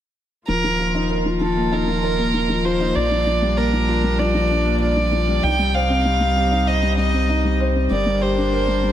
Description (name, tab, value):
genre	electronica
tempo	97 BPM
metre	4/4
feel	straight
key	unclear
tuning	A4 = 441 Hz
part	dark violin	melody	0.5-8.9 s	A4 to G5	-22 LUFS	right 1 dB	tape echo
part	dark string quartet	sustained chords	0.5-8.9 s	C3 to Bb4	-28 LUFS	equal	stereo widening
part	felt-muted upright piano	riff	0.5-8.9 s	F3 to C5	-21 LUFS	left 1 dB	tape echo
part	round analog bass	bass	0.5-8.9 s	Eb1 to C2	-23 LUFS	equal	none
room	light reverb, studio ambience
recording	none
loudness	-17 LUFS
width	side -11 dB against mid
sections	0.5-8.9 A section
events	none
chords	0.5 Ebsus2; 3.0 Bb6; 5.4 Cm; 7.9 Gm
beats	| 0.48 1.10 1.72 2.34 | 2.96 3.58 4.20 4.81 | 5.43 6.05 6.67 7.29 | 7.91 8.52